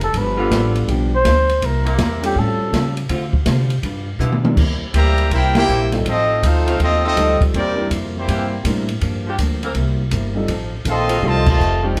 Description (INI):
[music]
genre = jazz, big band swing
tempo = 162 BPM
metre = 4/4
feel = swing 65% on 8ths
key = unclear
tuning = A4 = 440 Hz
[part]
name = trumpet with bucket mute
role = melody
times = 0.0-3.0 s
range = G4 to C5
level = -22 LUFS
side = equal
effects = plate reverb
[part]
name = vintage hollow-body jazz guitar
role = accompaniment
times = 0.0-12.0 s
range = G2 to B4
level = -31 LUFS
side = equal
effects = none
[part]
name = upright bass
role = bass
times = 0.0-12.0 s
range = F1 to D3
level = -22 LUFS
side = equal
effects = none
[part]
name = open jazz drum kit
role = drums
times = 0.0-12.0 s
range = crash cymbal, hi-hat, kick drum, ride cymbal, snare drum, toms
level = -25 LUFS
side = equal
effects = none
[part]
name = warm concert grand piano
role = accompaniment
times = 0.4-12.0 s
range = G3 to Bb4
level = -26 LUFS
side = equal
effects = none
[part]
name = mellow saxophone section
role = sustained chords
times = 0.4-12.0 s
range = C3 to Bb4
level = -29 LUFS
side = equal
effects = none
[part]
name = bright trumpet section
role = melody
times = 4.9-8.6, 10.9-11.8 s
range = Bb3 to C6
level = -22 LUFS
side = equal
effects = plate reverb
[part]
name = mellow trombone section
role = second line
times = 4.9-8.6, 10.9-12.0 s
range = C3 to G4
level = -27 LUFS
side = equal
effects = none
[sound]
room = moderate club reverb, RT60 0.7 s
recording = heard from further back in the room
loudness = -18 LUFS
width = mono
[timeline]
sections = 0.0-4.6 A section; 4.6-12.0 B section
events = muted trumpet solo 0.0-4.6; drum fill 4.2-4.6; band accent 5.5, 11.4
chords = 0.1 G7; 1.6 C7; 2.4 A7alt; 3.1 Dm7; 3.8 G7; 4.6 C7; 6.1 F7; 7.5 C7; 9.0 Gm7; 9.8 C7; 10.5 F7